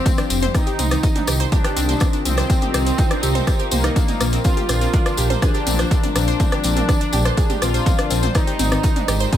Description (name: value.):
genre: melodic techno.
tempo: 123 BPM.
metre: 4/4.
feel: straight.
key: C minor.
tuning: A4 = 440 Hz.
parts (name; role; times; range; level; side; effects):
analog synth brass; melody; 0.0-9.4 s; Bb3 to F4; -25 LUFS; left 1 dB; chorus, digital delay.
rich chamber string section; sustained chords; 0.0-9.4 s; Eb3 to G4; -31 LUFS; left 2 dB; sidechain pumping.
deep dark ambient pad; texture; 0.0-9.4 s; Eb4 to Eb6; -31 LUFS; left 1 dB; chorus, built-in reverb, sidechain pumping.
wide unison pluck; arpeggios; 0.1-9.4 s; Bb3 to C5; -26 LUFS; moving between left 4 dB and right 7 dB; auto-pan, sidechain pumping, digital delay.
electronic kick drum; drums; 0.1-9.4 s; none; -18 LUFS; equal; none.
techno drum kit; drums; 0.1-9.4 s; hi-hat, rim click, toms; -26 LUFS; equal; none.
tambourine; percussion; 0.1-9.4 s; none; -30 LUFS; left 5 dB; none.
swelling detuned saw bass; bass; 0.3-9.3 s; F1 to C2; -20 LUFS; equal; sidechain pumping.
room: digital ambience.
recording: none.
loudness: -16 LUFS.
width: side -11 dB against mid.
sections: 0.0-9.4 A section.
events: none.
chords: 0.0 Fsus2; 0.5 Cm; 4.4 Bb; 8.3 Ab.